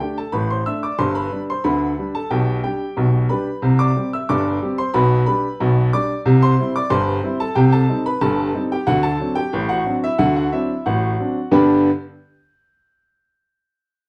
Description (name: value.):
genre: ragtime piano.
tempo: 91 BPM.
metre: 2/4.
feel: straight.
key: G major.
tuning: A4 = 440 Hz.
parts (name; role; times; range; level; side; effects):
warm upright piano; solo; 0.0-11.9 s; G1 to E6; -19 LUFS; equal; none.
room: wet studio reverb, RT60 0.7 s.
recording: band playing live in one room.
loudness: -19 LUFS.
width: mono.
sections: 0.0-11.5 A section; 11.5-12.8 B section.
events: none.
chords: 0.0 D5; 1.0 G; 2.3 G/B; 3.6 C; 4.9 G/B; 6.3 C; 7.6 Cm; 8.9 D7; 11.5 G.